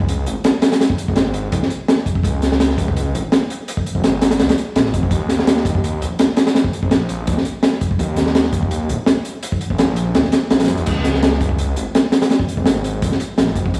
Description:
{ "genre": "drum and bass, jungle", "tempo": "167 BPM", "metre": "4/4", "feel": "straight", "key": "unclear", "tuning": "A4 = 439 Hz", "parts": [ { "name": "detuned saw bass", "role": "bass", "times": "0.0-13.8 s", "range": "Ab1 to Gb2", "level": "-22 LUFS", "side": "equal", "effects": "none" }, { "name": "crunchy breakbeat drum kit", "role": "drums", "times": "0.0-13.8 s", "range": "crash cymbal, hi-hat, kick drum, snare drum", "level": "-18 LUFS", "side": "equal", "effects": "none" } ], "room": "moderate echo chamber reverb, RT60 1.5 s", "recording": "played on a big sound system in a bare room, stone room reverb, vinyl crackle, small room reverb", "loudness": "-17 LUFS", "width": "mono", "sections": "0.0-10.9 A section; 10.9-13.8 A section", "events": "drop 0.0-10.9, 10.9-13.8", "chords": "none" }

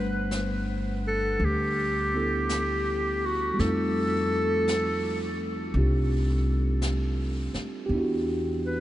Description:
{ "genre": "jazz ballad", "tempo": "56 BPM", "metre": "4/4", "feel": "swing 68% on 8ths", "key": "unclear", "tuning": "A4 = 440 Hz", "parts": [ { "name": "breathy clarinet", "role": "melody", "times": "0.0-8.8 s", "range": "F#4 to B4", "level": "-28 LUFS", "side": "equal", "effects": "none" }, { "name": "mellow tine electric piano", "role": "accompaniment", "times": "0.0-8.8 s", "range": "G3 to F#5", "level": "-30 LUFS", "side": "right 1 dB", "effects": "none" }, { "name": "upright bass", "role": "bass", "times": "0.0-8.8 s", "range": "G1 to F2", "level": "-29 LUFS", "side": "equal", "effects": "none" }, { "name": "jazz brush drum kit", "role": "drums", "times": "0.3-8.8 s", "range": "brushed snare drum, hi-hat, snare drum", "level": "-40 LUFS", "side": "left 1 dB", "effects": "none" } ], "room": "moderate huge ambient reverb, RT60 7.8 s", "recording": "in a vast, echoing space, nothing above 10.7 kHz", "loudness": "-24 LUFS", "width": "side -14 dB against mid", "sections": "0.0-8.8 A section", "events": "none", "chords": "0.0 Gmaj9; 3.6 F9; 7.9 Em9" }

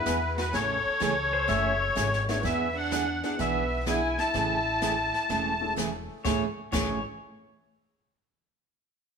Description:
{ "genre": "country, western swing", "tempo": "126 BPM", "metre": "4/4", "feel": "swing 67% on 8ths", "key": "A major", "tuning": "A4 = 440 Hz", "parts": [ { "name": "musette accordion", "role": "melody", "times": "0.0-5.7 s", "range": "B4 to A5", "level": "-28 LUFS", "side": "left 2 dB", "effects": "none" }, { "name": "dark fiddle", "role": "second line", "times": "0.0-5.7 s", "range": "A3 to A4", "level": "-34 LUFS", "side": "right 2 dB", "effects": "none" }, { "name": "warm upright piano", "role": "accompaniment", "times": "0.0-7.0 s", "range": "A3 to B4", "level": "-39 LUFS", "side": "left 4 dB", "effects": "none" }, { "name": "upright bass", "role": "bass", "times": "0.0-7.0 s", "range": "E1 to E2", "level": "-34 LUFS", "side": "left 1 dB", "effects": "none" }, { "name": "picked steel-string acoustic guitar", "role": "accompaniment", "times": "0.1-7.0 s", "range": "A2 to G#4", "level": "-32 LUFS", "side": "right 5 dB", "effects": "none" }, { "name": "jazz brush drum kit", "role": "drums", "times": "0.1-6.9 s", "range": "brushed snare drum, crash cymbal, hi-hat, kick drum, snare drum", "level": "-34 LUFS", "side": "left 1 dB", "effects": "none" }, { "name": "pedal steel guitar", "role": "second line", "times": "1.3-2.3, 6.2-7.0 s", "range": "C5 to E5", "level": "-33 LUFS", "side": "left 4 dB", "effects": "none" } ], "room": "wet stone room reverb, RT60 1.3 s", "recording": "band playing live in one room", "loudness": "-25 LUFS", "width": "side -6 dB against mid", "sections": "0.0-2.4 A section; 2.4-6.2 B section; 6.2-8.2 C section", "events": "none", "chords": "0.0 E7; 0.5 Amaj7; 2.4 E7; 4.3 Amaj7" }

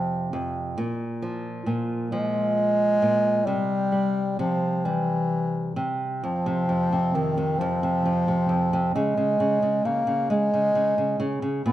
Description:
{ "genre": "children's music, lullaby", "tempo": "44 BPM (dotted quarters)", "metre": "6/8", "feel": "straight", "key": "F minor", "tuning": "A4 = 441 Hz", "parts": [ { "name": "warm bass clarinet", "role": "melody", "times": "0.0-11.7 s", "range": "Eb3 to C4", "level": "-22 LUFS", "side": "equal", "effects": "none" }, { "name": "nylon-string guitar", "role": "accompaniment", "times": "0.0-11.7 s", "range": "F2 to Ab3", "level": "-27 LUFS", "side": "right 1 dB", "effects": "none" } ], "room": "moderate recital hall reverb, RT60 1.4 s", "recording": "none", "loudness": "-22 LUFS", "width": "side -13 dB against mid", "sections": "0.0-6.2 A section; 6.2-11.7 B section", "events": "none", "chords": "0.0 F5; 0.8 Bb5; 3.5 C; 6.2 F5; 8.9 Db5" }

